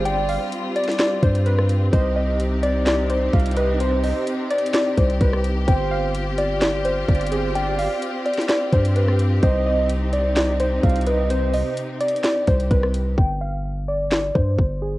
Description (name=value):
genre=hip hop, trap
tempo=128 BPM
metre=4/4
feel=half-time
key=C harmonic minor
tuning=A4 = 437 Hz
part: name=soft octave-layered synth lead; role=second line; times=0.0-11.7 s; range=C5 to F5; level=-29 LUFS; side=right 7 dB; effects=chorus, cassette tape, tape echo
part: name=clear symphonic string section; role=sustained chords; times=0.0-13.1 s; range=C3 to G4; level=-27 LUFS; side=equal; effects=cassette tape
part: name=long sustained 808-style bass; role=bass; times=0.0-15.0 s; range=G1 to G2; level=-22 LUFS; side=equal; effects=none
part: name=warbly dusty pluck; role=melody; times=0.1-15.0 s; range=Ab4 to G5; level=-24 LUFS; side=left 1 dB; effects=chorus, low-pass filter, cassette tape
part: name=trap drum kit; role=drums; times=0.1-14.7 s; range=handclaps, hi-hat, kick drum, rim click, snare drum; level=-21 LUFS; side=equal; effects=cassette tape
room=digital ambience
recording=home recording on cassette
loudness=-18 LUFS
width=side -17 dB against mid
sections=0.0-13.2 A section; 13.2-15.0 B section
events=hi-hats muted 13.2-15.0; filter sweep on synth pluck 13.2-15.0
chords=0.0 G7sus4; 1.9 Cm; 5.7 G7sus4; 9.4 Cm; 13.2 Gsus4